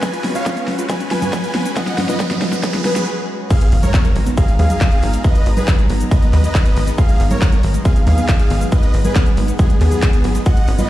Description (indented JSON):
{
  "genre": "uplifting trance",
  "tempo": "138 BPM",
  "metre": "4/4",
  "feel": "straight",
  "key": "G# dorian",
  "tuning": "A4 = 437 Hz",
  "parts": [
    { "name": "supersaw chords", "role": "melody", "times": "0.0-10.9 s", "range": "B3 to G#5", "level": "-25 LUFS", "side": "equal", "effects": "sidechain pumping, tape echo" },
    { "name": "dark grand piano", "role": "second line", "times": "0.0-10.9 s", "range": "G#4 to G#5", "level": "-29 LUFS", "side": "equal", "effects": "sidechain pumping, tape echo" },
    { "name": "lush unison pad", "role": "sustained chords", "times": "0.0-10.9 s", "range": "C#3 to A#5", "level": "-27 LUFS", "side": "right 1 dB", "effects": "chorus, sidechain pumping" },
    { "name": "wide unison pluck", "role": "arpeggios", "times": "0.0-10.9 s", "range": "F#3 to E#4", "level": "-26 LUFS", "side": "left 3 dB", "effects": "sidechain pumping, tape echo" },
    { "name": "big-room dance drum kit", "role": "drums", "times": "0.0-10.9 s", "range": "congas, crash cymbal, handclaps, hi-hat, shaker, snare drum", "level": "-22 LUFS", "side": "right 1 dB", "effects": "overdrive" },
    { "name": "electronic kick drum", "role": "drums", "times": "0.0-10.5 s", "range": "none", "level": "-14 LUFS", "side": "equal", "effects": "overdrive, high-pass filter on kick" },
    { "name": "riser and impact", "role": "sound effects", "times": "0.0-5.2 s", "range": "none", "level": "-26 LUFS", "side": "equal", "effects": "none" },
    { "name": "tight sequencer bass", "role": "bass", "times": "3.7-10.8 s", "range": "G#1 to D#2", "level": "-15 LUFS", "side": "equal", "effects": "sidechain pumping" }
  ],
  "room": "light reverb",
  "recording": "played on a big sound system in a bare room, stone room reverb, lossy compression artefacts",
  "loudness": "-13 LUFS",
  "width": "side -14 dB against mid",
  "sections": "0.0-3.5 A section; 3.5-10.9 B section",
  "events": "build-up 0.0-3.5; drum fill 0.0-3.1; riser 0.0-3.1; break 3.1-3.5; drop 3.5-10.9; impact 3.5-5.2",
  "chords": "0.0 C#7sus4/G#; 3.5 G#madd9"
}